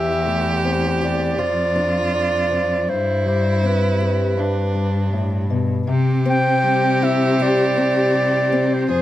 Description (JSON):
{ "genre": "acoustic folk-pop ballad", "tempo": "80 BPM", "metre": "4/4", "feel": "straight", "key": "C major", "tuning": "A4 = 440 Hz", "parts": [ { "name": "mellow clarinet", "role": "melody", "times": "0.0-9.0 s", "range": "B4 to G5", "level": "-21 LUFS", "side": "right 1 dB", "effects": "none" }, { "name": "rich violin", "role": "second line", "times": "0.0-9.0 s", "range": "D4 to Ab4", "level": "-26 LUFS", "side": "right 3 dB", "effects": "none" }, { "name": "fingerpicked acoustic archtop guitar", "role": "accompaniment", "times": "0.0-9.0 s", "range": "G2 to G4", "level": "-22 LUFS", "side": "left 4 dB", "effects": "none" }, { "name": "rich cello", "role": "bass", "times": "0.0-9.0 s", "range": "E2 to C3", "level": "-21 LUFS", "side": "right 1 dB", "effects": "none" } ], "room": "light reverb", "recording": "none", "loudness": "-16 LUFS", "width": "side -14 dB against mid", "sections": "0.0-5.9 A section; 5.9-9.0 B section", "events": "none", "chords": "0.0 Am7/E; 1.4 Dm/F; 2.9 Gsus4; 4.4 G; 5.9 C" }